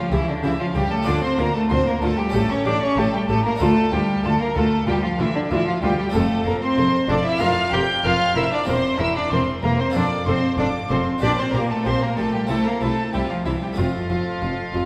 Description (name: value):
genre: classical, baroque-style concerto movement with solo episodes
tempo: 94 BPM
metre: 4/4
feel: straight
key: D minor, F major from 6.1 s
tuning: A4 = 444 Hz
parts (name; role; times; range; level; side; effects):
- dark studio violin section; melody; 0.0-14.9 s; D5 to G6; -30 LUFS; equal; none
- rich cello; melody; 0.0-14.9 s; D3 to G4; -25 LUFS; equal; none
- rich chamber violin section; second line; 0.0-14.9 s; D4 to G5; -29 LUFS; equal; none
- harpsichord; accompaniment; 0.0-14.9 s; D2 to Bb4; -34 LUFS; equal; none
- warm chamber viola section; accompaniment; 0.1-14.8 s; E4 to Bb4; -32 LUFS; equal; none
- rich chamber double bass section; bass; 0.1-14.8 s; E1 to D2; -30 LUFS; equal; none
- warm chamber cello section; bass; 0.1-14.8 s; D2 to D3; -30 LUFS; equal; none
room: wet scoring stage reverb, RT60 2.0 s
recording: heard from further back in the room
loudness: -21 LUFS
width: mono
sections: 0.0-14.9 A section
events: none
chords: 0.0 A7/C#; 1.1 Dm; 2.3 A7; 3.6 Dm; 6.1 F; 7.4 Gm7/F; 8.7 C7/E; 10.0 F; 11.2 Gm/Bb; 12.5 C; 13.8 F